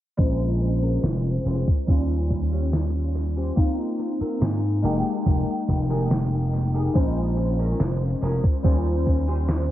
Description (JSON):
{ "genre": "vaporwave", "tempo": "71 BPM", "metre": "4/4", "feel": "straight", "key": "unclear", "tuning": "A4 = 436 Hz", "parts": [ { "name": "warbly lo-fi synth keys", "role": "accompaniment", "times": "0.2-9.7 s", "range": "G3 to G5", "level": "-27 LUFS", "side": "left 1 dB", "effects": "ensemble chorus, dub echo" }, { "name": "vintage slap bass", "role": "bass", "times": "0.2-9.7 s", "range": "F1 to Ab2", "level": "-23 LUFS", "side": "equal", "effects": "tube saturation" }, { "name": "electronic kick drum", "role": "drums", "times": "0.2-9.2 s", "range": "none", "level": "-21 LUFS", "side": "equal", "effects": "overdrive" }, { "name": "gated 80s digital drum machine", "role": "drums", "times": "0.2-9.7 s", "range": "hi-hat, snare drum", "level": "-29 LUFS", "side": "equal", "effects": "gated reverb, gated reverb snare, overdrive, dub echo" }, { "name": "clean electric guitar", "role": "riff", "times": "0.6-9.5 s", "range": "C4 to Db5", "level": "-34 LUFS", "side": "equal", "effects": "ensemble chorus, low-pass filter, dub echo" } ], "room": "light reverb, digital ambience", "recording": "echo-heavy mix, cassette tape, low-pass filter", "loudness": "-21 LUFS", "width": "side -13 dB against mid", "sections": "0.2-9.7 A section", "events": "filter sweep on clean electric guitar 0.2-9.7; filter sweep 0.2-9.7", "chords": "0.2 Bbm7; 1.9 Eb13; 3.6 Ab69; 4.8 Fm11; 7.0 Bbm7; 8.6 Eb13" }